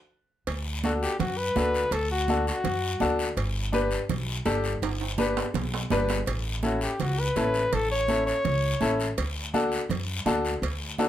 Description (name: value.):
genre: latin, cumbia.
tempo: 165 BPM.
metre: 4/4.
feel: straight.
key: D major.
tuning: A4 = 440 Hz.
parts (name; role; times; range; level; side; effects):
upright bass; bass; 0.5-11.1 s; G1 to F#2; -30 LUFS; equal; none.
congas; percussion; 0.5-11.1 s; none; -32 LUFS; right 4 dB; none.
cowbell and timbales; percussion; 0.5-11.1 s; none; -34 LUFS; right 5 dB; none.
guiro; percussion; 0.5-11.1 s; none; -36 LUFS; left 4 dB; none.
warm flugelhorn; second line; 0.8-3.2, 6.6-9.0 s; F#4 to C#5; -27 LUFS; left 2 dB; none.
clear upright piano; accompaniment; 0.8-11.1 s; C#4 to B4; -27 LUFS; left 2 dB; none.
room: moderate studio reverb, RT60 0.5 s.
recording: none.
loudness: -24 LUFS.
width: side -11 dB against mid.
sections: 0.5-11.1 A section.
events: drum fill 0.0-0.5, 4.8-6.3; band accent 0.0-0.5; flugelhorn solo 0.5-11.1.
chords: 0.5 D; 3.4 G; 6.3 A; 9.2 D.